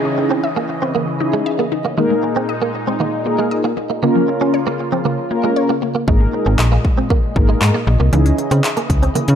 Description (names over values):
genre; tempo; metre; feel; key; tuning
dance-pop; 117 BPM; 4/4; straight; Ab major; A4 = 441 Hz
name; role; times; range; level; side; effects
mellow synth brass; accompaniment; 0.0-8.7 s; Bb3 to Bb4; -19 LUFS; left 1 dB; chorus, sidechain pumping
filtered supersaw swell; sustained chords; 0.0-9.4 s; Bb2 to Eb5; -23 LUFS; equal; phaser, sidechain pumping
resonant blip pluck; arpeggios; 0.0-9.3 s; Db3 to Fb5; -25 LUFS; left 3 dB; phaser, sidechain pumping, tape echo
downlifter; sound effects; 0.0-2.0 s; none; -34 LUFS; equal; none
direct-recorded clean electric guitar; riff; 0.2-9.2 s; Ab3 to Db4; -22 LUFS; right 5 dB; ensemble chorus
slap-like FM bass; bass; 6.1-9.4 s; Ab1 to Db3; -14 LUFS; equal; sidechain pumping
house drum kit; drums; 6.1-9.4 s; handclaps, hi-hat, kick drum; -17 LUFS; equal; overdrive
room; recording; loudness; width
light reverb; dark, warm production; -14 LUFS; side -8 dB against mid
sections
0.0-9.4 A section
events
none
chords
0.0 Dbmadd9; 2.0 Absus2; 4.0 Bbm; 6.1 Absus2; 8.1 Dbmadd9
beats
0.44 0.95 1.46 | 1.98 2.49 3.00 3.51 | 4.03 4.54 5.05 5.56 | 6.08 6.59 7.10 7.62 | 8.13 8.64 9.15